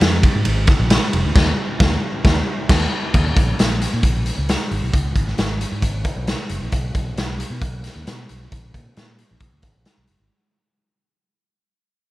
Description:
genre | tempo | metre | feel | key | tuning
uptempo 1960s-style soul | 134 BPM | 4/4 | straight | unclear | A4 = 440 Hz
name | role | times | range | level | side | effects
fingered electric bass | bass | 0.0-10.3 s | F1 to B2 | -22 LUFS | equal | none
raw garage drum kit | drums | 0.0-10.2 s | crash cymbal, hi-hat, kick drum, ride cymbal, snare drum | -18 LUFS | equal | none
room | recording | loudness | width
little or no reverb | none | -17 LUFS | side -18 dB against mid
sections
0.0-3.1 A section; 3.1-10.3 B section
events
band accent 1.4-3.1; fade-out 3.1-10.3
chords
none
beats
0.01 0.46 0.91 | 1.35 1.80 2.25 2.70 | 3.14 3.59 4.04 4.49 | 4.93 5.38 5.83 6.28 | 6.73 7.17 7.62 8.07 | 8.52 8.96 9.41 9.86

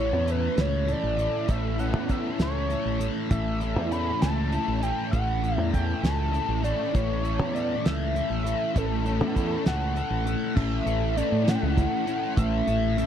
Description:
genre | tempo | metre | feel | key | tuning
psychedelic rock | 66 BPM (dotted quarters) | 6/8 | straight | A major | A4 = 443 Hz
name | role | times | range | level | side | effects
overdriven synth lead | melody | 0.0-13.1 s | A4 to B5 | -30 LUFS | equal | distortion, slapback echo
overdriven electric guitar | riff | 0.0-13.1 s | A2 to A4 | -28 LUFS | left 1 dB | flanger
growling fingered electric bass | bass | 0.0-13.0 s | A1 to A2 | -28 LUFS | equal | overdrive
damped 70s drum kit | drums | 0.3-13.1 s | crash cymbal, hi-hat, kick drum, snare drum | -25 LUFS | right 1 dB | none
room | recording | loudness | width
small room ambience | dry, close 1970s-style studio recording | -23 LUFS | side -9 dB against mid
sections
0.0-10.6 A section; 10.6-13.1 B section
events
none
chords
0.0 A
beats
0.58 | 1.49 2.40 | 3.31 4.22 | 5.13 6.04 | 6.94 7.85 | 8.76 9.66 | 10.57 11.47 | 12.38

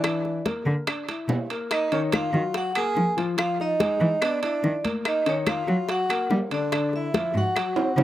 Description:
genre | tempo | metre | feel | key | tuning
Afro-Cuban jazz | 144 BPM | 4/4 | straight | unclear | A4 = 440 Hz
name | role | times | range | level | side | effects
vibraphone with medium hard mallets | melody | 0.0-8.0 s | C#5 to G#5 | -27 LUFS | right 1 dB | slapback echo
warm tenor saxophone | second line | 0.0-8.0 s | C#4 to G#4 | -31 LUFS | right 3 dB | slapback echo
warm grand piano | accompaniment | 0.0-8.0 s | D3 to E5 | -29 LUFS | left 3 dB | slapback echo
bongos | percussion | 0.0-8.0 s | none | -30 LUFS | left 5 dB | slapback echo
claves | percussion | 0.0-7.8 s | none | -32 LUFS | left 6 dB | slapback echo
congas | percussion | 0.0-8.0 s | none | -33 LUFS | left 1 dB | none
timbales | percussion | 0.0-8.0 s | none | -30 LUFS | right 5 dB | none
dark cello | bass | 0.7-8.0 s | G#2 to G3 | -24 LUFS | equal | none
room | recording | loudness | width
little or no reverb | recorded outdoors, with no room sound | -22 LUFS | side -13 dB against mid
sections
0.0-8.0 A section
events
drum fill 7.8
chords
0.0 F#7b13 (rootless); 1.7 Bmaj7 (rootless); 3.4 Fm7; 4.2 E5; 5.1 D#madd9; 6.7 N.C.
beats
| 0.04 0.46 0.88 1.30 | 1.71 2.13 2.55 2.97 | 3.38 3.80 4.22 4.64 | 5.05 5.47 5.89 6.31 | 6.72 7.14 7.56 7.98

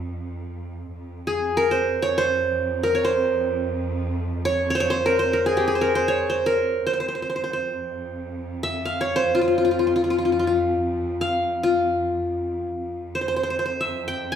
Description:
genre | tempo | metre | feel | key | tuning
Arabic maqam ensemble | free time | none | none | F maqam nahawand | A4 = 440 Hz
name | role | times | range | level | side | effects
clear studio cello section | drone | 0.0-14.4 s | F2 | -30 LUFS | right 2 dB | none
qanun | melody | 1.3-14.4 s | F4 to Ab5 | -21 LUFS | equal | none
room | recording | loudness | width
wet large studio reverb, RT60 1.1 s | band playing live in one room | -20 LUFS | side -8 dB against mid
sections
0.9-12.8 A section; 12.8-14.4 A section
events
none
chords
none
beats
free time

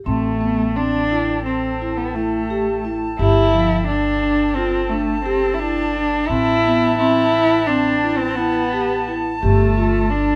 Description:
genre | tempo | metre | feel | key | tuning
contemporary instrumental, chamber music in an uneven meter | 173 BPM (eighths) | 9/8 | straight | A minor | A4 = 442 Hz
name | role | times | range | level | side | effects
upright bass | bass | 0.0-10.4 s | G1 to A1 | -26 LUFS | equal | none
dark cello | melody | 0.1-10.4 s | A3 to E4 | -22 LUFS | equal | none
dark woodwind section | sustained chords | 0.1-10.4 s | F4 to A5 | -29 LUFS | equal | none
vibraphone with soft mallets | arpeggios | 0.1-10.3 s | F3 to G4 | -24 LUFS | equal | none
room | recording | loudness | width
light reverb | close, detailed microphones | -18 LUFS | mono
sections
0.1-10.4 A section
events
none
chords
0.1 Am7; 3.2 Gsus2; 6.3 Am9; 9.4 G7sus2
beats
| 0.06 0.41 0.76 1.11 1.46 1.81 2.16 2.50 2.85 | 3.20 3.54 3.89 4.23 4.58 4.92 5.26 5.61 5.96 | 6.30 6.65 6.99 7.34 7.68 8.03 8.38 8.73 9.08 | 9.43 9.78 10.13

